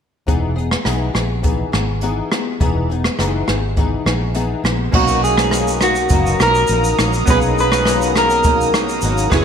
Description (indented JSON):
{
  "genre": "indie pop, bedroom pop",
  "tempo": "103 BPM",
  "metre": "4/4",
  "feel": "straight",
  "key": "B major",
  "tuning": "A4 = 440 Hz",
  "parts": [
    { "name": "flamenco guitar", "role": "accompaniment", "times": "0.3-9.4 s", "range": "B2 to G#4", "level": "-22 LUFS", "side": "left 5 dB", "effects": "analog chorus, vibrato effect" },
    { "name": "vintage muted fingered electric bass", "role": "bass", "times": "0.3-9.4 s", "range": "E1 to B1", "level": "-21 LUFS", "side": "equal", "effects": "none" },
    { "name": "jazz brush drum kit", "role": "drums", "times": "0.3-9.4 s", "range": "crash cymbal, hi-hat, kick drum, rim click, shaker", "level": "-19 LUFS", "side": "right 1 dB", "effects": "gated reverb" },
    { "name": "chorused retro synth keys", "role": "accompaniment", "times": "4.9-9.4 s", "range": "A#3 to G#4", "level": "-24 LUFS", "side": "right 3 dB", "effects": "cassette tape" },
    { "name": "phased analog pad", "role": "sustained chords", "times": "5.4-9.4 s", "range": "F#4 to E6", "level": "-25 LUFS", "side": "equal", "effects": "phaser, chorus" },
    { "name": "electric slide guitar", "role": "melody", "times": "5.0-9.3 s", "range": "F#4 to B4", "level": "-17 LUFS", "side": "right 1 dB", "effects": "wide subtle chorus" }
  ],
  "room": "moderate plate reverb, RT60 1.9 s, studio reverb",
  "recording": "bright 1980s-style digital production",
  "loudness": "-14 LUFS",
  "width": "side -7 dB against mid",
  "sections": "0.3-4.9 A section; 4.9-9.4 B section",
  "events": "none",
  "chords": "0.3 Emaj7; 4.9 Bmaj7"
}